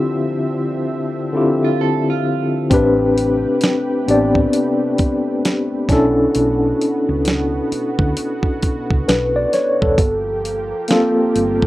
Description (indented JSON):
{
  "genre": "R&B, neo-soul",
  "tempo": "66 BPM",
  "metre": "4/4",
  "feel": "swing 62% on 16ths",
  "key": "unclear",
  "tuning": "A4 = 438 Hz",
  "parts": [
    { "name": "tine electric piano", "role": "accompaniment", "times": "0.0-11.7 s", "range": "D3 to D5", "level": "-16 LUFS", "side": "left 1 dB", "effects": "overdrive, medium tremolo" },
    { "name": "lush unison pad", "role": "sustained chords", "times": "0.0-11.7 s", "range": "B2 to E5", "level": "-29 LUFS", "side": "right 4 dB", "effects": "chorus" },
    { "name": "electric guitar at the edge of break-up", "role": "second line", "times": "1.6-2.7 s", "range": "F4 to A4", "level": "-27 LUFS", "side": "right 16 dB", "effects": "analog delay" },
    { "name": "hollow-body short-scale fingered electric bass", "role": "bass", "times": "2.7-11.7 s", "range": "E1 to D2", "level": "-23 LUFS", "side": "right 1 dB", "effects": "none" },
    { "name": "dusty soul sampler-style drum kit", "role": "drums", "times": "2.7-11.7 s", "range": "hi-hat, kick drum, snare drum", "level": "-18 LUFS", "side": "right 1 dB", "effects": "none" }
  ],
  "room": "light reverb",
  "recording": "rough home demo mix",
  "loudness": "-15 LUFS",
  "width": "side -16 dB against mid",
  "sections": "0.0-2.7 A section; 2.7-11.7 A section",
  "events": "break 0.0-2.7",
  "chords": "0.0 Dm9; 2.7 Am9; 5.9 Bm9; 10.0 Gm9"
}